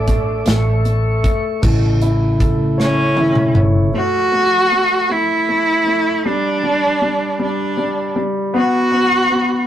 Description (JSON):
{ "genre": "six-eight pop ballad", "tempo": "52 BPM (dotted quarters)", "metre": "6/8", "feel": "straight", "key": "unclear", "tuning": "A4 = 440 Hz", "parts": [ { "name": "warm cello", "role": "melody", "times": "0.0-9.6 s", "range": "C#4 to F#4", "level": "-16 LUFS", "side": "right 1 dB", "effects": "none" }, { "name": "warm concert grand piano", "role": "accompaniment", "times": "0.0-9.7 s", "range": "G3 to C#5", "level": "-21 LUFS", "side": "equal", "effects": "none" }, { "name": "mellow tonewheel organ", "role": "sustained chords", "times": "0.0-3.9 s", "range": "C#3 to D6", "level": "-19 LUFS", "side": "equal", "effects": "slow rotary speaker" }, { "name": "vintage muted fingered electric bass", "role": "bass", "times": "0.0-3.9 s", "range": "G1 to A1", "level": "-18 LUFS", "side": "equal", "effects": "none" }, { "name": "modern studio drum kit", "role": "drums", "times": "0.1-3.7 s", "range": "crash cymbal, hi-hat, kick drum, snare drum, toms", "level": "-18 LUFS", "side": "equal", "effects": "none" } ], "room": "wet booth ambience, RT60 0.3 s", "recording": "rough rehearsal-room recording, warm saturation", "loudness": "-14 LUFS", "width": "side -11 dB against mid", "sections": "0.0-1.6 A section; 1.6-3.9 B section; 3.9-9.7 C section", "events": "drum fill 2.8-3.9", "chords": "0.5 A; 3.9 N.C." }